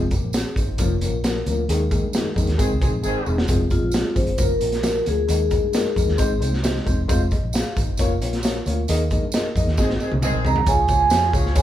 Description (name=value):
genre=uptempo 1960s-style soul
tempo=134 BPM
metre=4/4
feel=straight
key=Ab major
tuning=A4 = 440 Hz
part: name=vintage muted fingered electric bass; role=bass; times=0.0-11.6 s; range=Fb1 to G2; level=-24 LUFS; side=equal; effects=none
part: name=dark upright piano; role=accompaniment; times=0.1-11.6 s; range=Eb3 to F5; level=-25 LUFS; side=left 2 dB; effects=none
part: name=raw garage drum kit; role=drums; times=0.1-11.6 s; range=hi-hat, kick drum, snare drum, toms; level=-23 LUFS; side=equal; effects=none
part: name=tambourine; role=percussion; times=0.1-11.6 s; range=none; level=-35 LUFS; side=right 4 dB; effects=none
part: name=warm horn section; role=second line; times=2.6-3.4, 9.8-11.6 s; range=Eb3 to Ab4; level=-29 LUFS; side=right 1 dB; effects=none
part: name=vibraphone with soft mallets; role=melody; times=3.7-6.4, 10.5-11.6 s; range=F4 to Bb5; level=-21 LUFS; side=right 1 dB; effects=none
room=light reverb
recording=band playing live in one room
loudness=-18 LUFS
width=side -12 dB against mid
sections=0.0-10.7 A section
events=band accent 1.7-3.5, 8.9-10.7; drum fill 3.0-3.5, 9.8-10.7; upright piano fill 6.4-7.1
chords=0.0 Fm; 0.8 Bbm/F; 1.7 Ebsus4; 2.6 Ab; 3.5 Fm; 4.4 Bbm/F; 5.3 Ebsus4; 6.2 Ab; 7.1 Fm; 8.0 Bbm/F; 8.9 Ebsus4; 9.8 Ab; 10.7 Db